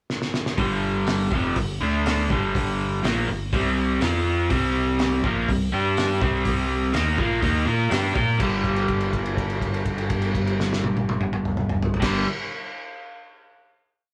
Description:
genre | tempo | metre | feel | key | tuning
garage rock duo or trio | 123 BPM | 4/4 | straight | unclear | A4 = 435 Hz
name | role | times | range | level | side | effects
cloth-damped thuddy drum kit | drums | 0.1-12.1 s | crash cymbal, hi-hat, kick drum, snare drum, toms | -29 LUFS | equal | none
crunchy overdriven guitar | riff | 0.6-12.3 s | F2 to Bb4 | -25 LUFS | equal | none
overdriven fingered electric bass | bass | 0.6-12.2 s | F1 to Bb2 | -31 LUFS | equal | none
room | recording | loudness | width
light reverb | band playing live in one room | -23 LUFS | mono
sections
0.0-0.6 pickup bar; 0.6-8.4 riff; 8.4-12.3 final chord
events
drum fill 0.1-0.6; held note 8.4-12.0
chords
0.0 N.C.; 0.6 G5; 1.8 D5; 2.3 G5; 3.5 C5; 4.0 F5; 4.5 C5; 5.7 G5; 6.2 C5; 8.4 G5

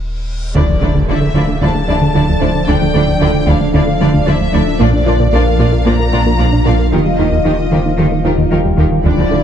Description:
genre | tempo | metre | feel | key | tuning
cinematic, hybrid orchestral and electronic film score | 113 BPM | 4/4 | straight | D minor | A4 = 440 Hz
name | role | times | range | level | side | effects
pure sine sub bass | bass | 0.0-9.4 s | D1 to Bb1 | -19 LUFS | equal | none
reverse cymbal and impact | sound effects | 0.3-2.7 s | none | -23 LUFS | left 1 dB | none
deep dark ambient pad | sustained chords | 1.5-9.4 s | E3 to F5 | -19 LUFS | equal | chorus, built-in reverb
fat analog bass | riff | 0.5-9.4 s | D2 to Bb3 | -17 LUFS | right 2 dB | none
warm symphonic violin section | melody | 0.6-9.4 s | D5 to Bb5 | -22 LUFS | left 4 dB | none
warm symphonic violin section | second line | 0.6-9.4 s | E4 to D5 | -24 LUFS | left 4 dB | none
rich symphonic viola section | accompaniment | 0.6-9.4 s | F3 to F4 | -22 LUFS | equal | none
soft round pluck | arpeggios | 0.6-9.4 s | D3 to F4 | -22 LUFS | left 3 dB | none
rich symphonic cello section | bass | 0.6-9.4 s | Bb2 to Eb3 | -21 LUFS | right 3 dB | none
rich symphonic double bass section | bass | 0.6-9.4 s | Bb1 to Eb2 | -20 LUFS | right 2 dB | none
felt-muted upright piano | texture | 1.4-9.4 s | G4 to G5 | -28 LUFS | left 1 dB | none
room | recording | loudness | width
moderate scoring stage reverb, RT60 1.8 s | dark, warm production, nothing above 11.0 kHz | -10 LUFS | side -9 dB against mid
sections
0.6-9.4 A section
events
break 0.0-0.6; reverse cymbal 0.3; impact 0.6-2.7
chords
0.0 N.C.; 0.6 Dmadd9; 4.8 Bb; 6.9 Ebadd9

